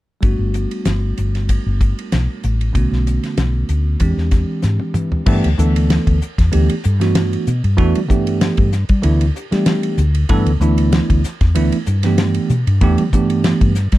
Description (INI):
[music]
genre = electric jazz fusion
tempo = 95 BPM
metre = 4/4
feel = swing 54% on 16ths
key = G major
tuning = A4 = 440 Hz
[part]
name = bell-like tine electric piano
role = accompaniment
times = 0.2-13.7 s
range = D3 to A4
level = -19 LUFS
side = right 2 dB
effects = phaser
[part]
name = woody fretless electric bass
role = bass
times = 0.2-14.0 s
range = G1 to G3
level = -16 LUFS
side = equal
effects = none
[part]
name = damped 70s drum kit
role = drums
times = 0.2-14.0 s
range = crash cymbal, hi-hat, kick drum, ride cymbal, snare drum, toms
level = -19 LUFS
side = equal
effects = none
[sound]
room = light reverb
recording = dark, warm production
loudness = -14 LUFS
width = side -16 dB against mid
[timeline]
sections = 0.2-5.3 A section; 5.3-14.0 B section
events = drum fill 4.6-5.3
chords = 0.2 Gmaj9; 2.8 Bm9; 4.0 E7alt; 5.3 G69